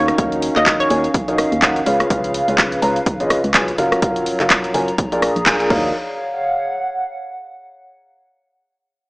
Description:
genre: piano house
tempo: 125 BPM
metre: 4/4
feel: swing 58% on 16ths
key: unclear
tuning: A4 = 439 Hz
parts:
  - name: hollow square pluck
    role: melody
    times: 0.0-1.5 s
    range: Db5 to Eb5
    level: -20 LUFS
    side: equal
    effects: chorus, tape echo
  - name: dark upright piano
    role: riff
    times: 0.0-5.9 s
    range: Bb2 to Bb5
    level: -19 LUFS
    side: equal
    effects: sidechain pumping, tape echo
  - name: organ-like FM bass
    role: bass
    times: 0.0-5.9 s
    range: Gb1 to Eb2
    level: -27 LUFS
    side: equal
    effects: sidechain pumping
  - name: warbly tape-like pad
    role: texture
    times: 0.0-7.8 s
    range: Gb3 to Bb5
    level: -24 LUFS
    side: right 1 dB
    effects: chorus, built-in reverb, sidechain pumping
  - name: house drum kit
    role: drums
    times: 0.1-5.8 s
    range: crash cymbal, handclaps, hi-hat, rim click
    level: -18 LUFS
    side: equal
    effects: none
  - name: electronic kick drum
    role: drums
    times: 0.2-5.8 s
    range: none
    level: -23 LUFS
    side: equal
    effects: none
room: moderate lush hall reverb, RT60 1.8 s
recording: dry, gritty hardware recording, small speaker sound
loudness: -15 LUFS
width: side -25 dB against mid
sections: 0.0-5.9 A section; 5.9-7.9 B section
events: drop 0.0-5.9; band accent 5.5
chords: 0.0 Ebm9; 1.9 Db7; 3.8 Gbmaj7; 5.0 Bb7; 5.7 Ebm9; 5.9 Dbadd11

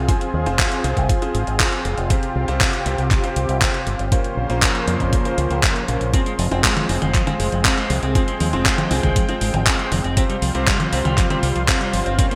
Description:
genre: italo disco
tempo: 119 BPM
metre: 4/4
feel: straight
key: F minor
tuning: A4 = 444 Hz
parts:
  - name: lush unison pad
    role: sustained chords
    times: 0.0-12.4 s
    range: Db3 to G5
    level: -28 LUFS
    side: equal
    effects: chorus
  - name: fingered electric bass with an envelope filter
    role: bass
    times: 0.0-12.2 s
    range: F1 to F2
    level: -26 LUFS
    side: equal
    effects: none
  - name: bright concert grand piano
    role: stabs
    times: 0.1-12.4 s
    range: Bb2 to C5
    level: -29 LUFS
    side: equal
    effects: digital delay
  - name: dusty soul sampler-style drum kit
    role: drums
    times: 0.1-12.4 s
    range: handclaps, hi-hat, toms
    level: -24 LUFS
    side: equal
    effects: studio reverb, gated reverb
  - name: electronic kick drum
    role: drums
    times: 0.1-12.3 s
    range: none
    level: -22 LUFS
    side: equal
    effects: studio reverb
  - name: clean electric guitar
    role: arpeggios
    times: 6.1-12.4 s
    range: F3 to C4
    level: -29 LUFS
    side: equal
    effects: vintage 12-bit sampler grit, digital delay
room: moderate plate reverb, RT60 1.8 s, digital ambience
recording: bright 1980s-style digital production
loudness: -19 LUFS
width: mono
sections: 0.0-12.4 A section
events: none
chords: 0.0 Fm; 2.1 Csus4; 4.1 Bbmadd9; 6.1 Fm; 10.2 Csus4

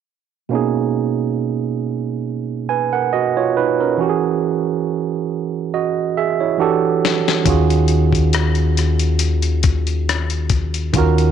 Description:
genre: R&B, neo-soul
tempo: 69 BPM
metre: 4/4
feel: swing 53% on 16ths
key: unclear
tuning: A4 = 440 Hz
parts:
  - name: barky tine electric piano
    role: accompaniment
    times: 0.5-11.3 s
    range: B2 to G#5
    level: -18 LUFS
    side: right 8 dB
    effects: none
  - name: dusty soul sampler-style drum kit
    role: drums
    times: 7.0-11.3 s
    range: hi-hat, kick drum, rim click, snare drum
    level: -20 LUFS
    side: left 6 dB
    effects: none
  - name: deep dub fingered electric bass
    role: bass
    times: 7.5-11.3 s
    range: Eb2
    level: -17 LUFS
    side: left 2 dB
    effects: none
room: digital ambience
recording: 1960s-style stereo with parts hard left and right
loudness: -16 LUFS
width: side -8 dB against mid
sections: 0.5-11.3 A section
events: drum fill 5.7-7.5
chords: 0.5 Bmaj13; 4.0 E69; 6.6 Em11; 7.5 Ebm11

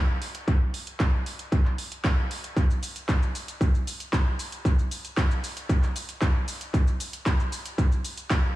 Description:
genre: nu-disco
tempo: 115 BPM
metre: 4/4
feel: straight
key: none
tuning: none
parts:
  - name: house drum kit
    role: drums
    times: 0.2-8.4 s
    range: handclaps, hi-hat, shaker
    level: -32 LUFS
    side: equal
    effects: overdrive, dub echo
  - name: electronic kick drum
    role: drums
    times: 0.5-8.4 s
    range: none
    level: -23 LUFS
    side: equal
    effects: overdrive
room: little or no reverb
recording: echo-heavy mix, studio reverb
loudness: -24 LUFS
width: side -16 dB against mid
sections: 0.0-8.6 A section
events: none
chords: none

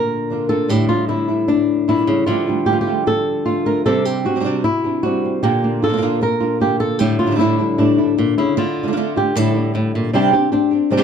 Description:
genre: flamenco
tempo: 153 BPM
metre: 4/4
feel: straight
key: unclear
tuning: A4 = 438 Hz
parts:
  - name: flamenco guitar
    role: melody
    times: 0.0-11.0 s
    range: A2 to Bb4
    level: -16 LUFS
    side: left 1 dB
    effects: none
  - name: flamenco guitar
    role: stabs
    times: 0.3-11.0 s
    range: A2 to G4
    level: -21 LUFS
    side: right 4 dB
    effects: none
room: moderate studio reverb, RT60 0.8 s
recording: dark, warm production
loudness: -15 LUFS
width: side -7 dB against mid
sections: 0.0-10.1 A section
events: none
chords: 0.0 Bb; 0.7 A7sus4; 2.3 Dm; 3.9 Csus2; 5.4 Bb; 7.0 A7sus4; 8.6 Dm; 9.4 A7sus4; 10.1 Csus2

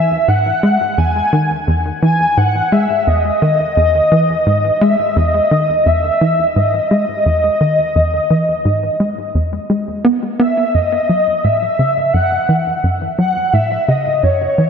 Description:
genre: ambient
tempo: 86 BPM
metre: 4/4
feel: straight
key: unclear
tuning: A4 = 440 Hz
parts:
  - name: breathy flute-like synth lead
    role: melody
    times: 0.0-14.7 s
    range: C#5 to G#5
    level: -15 LUFS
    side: left 1 dB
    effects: ensemble chorus, ping-pong delay
  - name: tight sequencer bass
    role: riff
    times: 0.0-14.7 s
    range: E2 to B3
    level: -16 LUFS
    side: equal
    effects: lush chorus, ping-pong delay
room: wet lush hall reverb, RT60 2.7 s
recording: dreamy mix soaked in reverb, nothing above 7.9 kHz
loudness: -12 LUFS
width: side -7 dB against mid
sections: 0.0-14.7 A section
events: none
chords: 0.0 Emaj7; 10.7 F#m

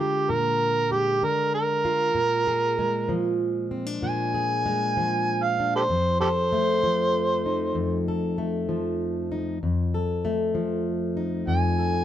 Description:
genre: acoustic country blues, solo or duo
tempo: 64 BPM (dotted quarters)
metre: 12/8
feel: straight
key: unclear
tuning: A4 = 440 Hz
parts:
  - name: overdriven harmonica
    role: melody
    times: 0.0-12.0 s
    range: G4 to Ab5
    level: -23 LUFS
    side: right 2 dB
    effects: none
  - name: fingerpicked plugged-in steel-string acoustic guitar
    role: accompaniment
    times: 0.0-12.0 s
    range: F2 to A4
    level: -25 LUFS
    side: left 1 dB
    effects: none
room: light reverb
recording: none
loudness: -22 LUFS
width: side -11 dB against mid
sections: 0.0-12.0 A section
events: none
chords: 0.0 Bb7; 5.9 F7

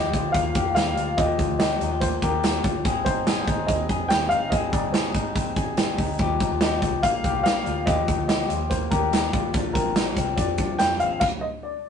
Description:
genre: jangly indie pop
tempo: 143 BPM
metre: 4/4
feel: straight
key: Eb major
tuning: A4 = 440 Hz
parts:
  - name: dark upright piano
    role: melody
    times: 0.0-11.9 s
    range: Bb4 to G5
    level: -26 LUFS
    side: equal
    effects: none
  - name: electric guitar through a small old amp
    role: arpeggios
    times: 0.0-11.8 s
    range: F3 to Ab4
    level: -27 LUFS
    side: left 6 dB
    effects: warbly pitch drift
  - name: vintage muted picked electric bass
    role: bass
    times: 0.0-11.2 s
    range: G1 to G2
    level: -32 LUFS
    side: right 1 dB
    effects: none
  - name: big rock drum kit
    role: drums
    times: 0.1-11.3 s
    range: crash cymbal, hi-hat, kick drum, snare drum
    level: -24 LUFS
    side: right 2 dB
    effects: none
room: wet small room reverb, RT60 0.5 s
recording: rough rehearsal-room recording, tube saturation, nothing above 10.4 kHz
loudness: -21 LUFS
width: side -7 dB against mid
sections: 0.0-11.9 A section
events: stop 11.2-11.9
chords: 0.0 Ebadd9; 2.9 Ab; 6.2 Ebadd9; 9.5 Bbadd9

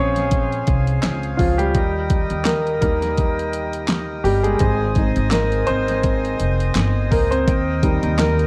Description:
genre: piano-driven pop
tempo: 84 BPM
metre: 4/4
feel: swing 56% on 16ths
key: Ab major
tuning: A4 = 440 Hz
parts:
  - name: warm concert grand piano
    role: accompaniment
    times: 0.0-8.5 s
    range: F3 to Db5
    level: -23 LUFS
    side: equal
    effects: none
  - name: accordion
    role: sustained chords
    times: 0.0-8.5 s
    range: Ab4 to Eb6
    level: -30 LUFS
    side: equal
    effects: none
  - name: upright bass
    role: bass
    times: 0.0-8.5 s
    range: F1 to Eb2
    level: -24 LUFS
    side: equal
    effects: none
  - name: pop drum kit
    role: drums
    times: 0.2-8.5 s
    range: handclaps, hi-hat, kick drum, snare drum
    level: -24 LUFS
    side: equal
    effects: overdrive
room: light reverb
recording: worn, warbling old tape, cassette tape, warbly pitch drift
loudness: -19 LUFS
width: mono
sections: 0.0-8.5 A section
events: grand piano solo 0.0-8.5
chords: 0.0 Db; 1.7 Eb; 4.6 Ab; 7.5 Eb

